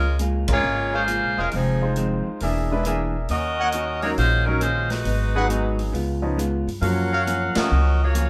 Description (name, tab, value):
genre	jazz, big band swing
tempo	136 BPM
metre	4/4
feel	swing 66% on 8ths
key	Db major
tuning	A4 = 438 Hz
part	clear saxophone section	melody	0.0-8.3 s	F3 to Gb5	-26 LUFS	equal	none
part	vintage hollow-body jazz guitar	accompaniment	0.0-8.3 s	F2 to G#4	-32 LUFS	equal	none
part	upright bass	bass	0.0-8.3 s	Fb1 to G2	-26 LUFS	equal	none
part	swinging big-band drum kit	drums	0.2-8.3 s	hi-hat, kick drum, ride cymbal, snare drum	-34 LUFS	equal	none
part	clear baby grand piano	accompaniment	0.5-7.7 s	F3 to C5	-30 LUFS	equal	none
part	warm trumpet section	stabs	0.9-7.2 s	Gb4 to Gb5	-29 LUFS	equal	none
room	light reverb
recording	none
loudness	-22 LUFS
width	mono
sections	0.0-8.3 A section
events	band accent 0.4, 7.5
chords	0.0 Db6; 1.5 Fm7; 2.4 E7#11; 3.3 Ebm7; 5.1 Abm7; 5.9 Db7; 6.8 Gbmaj7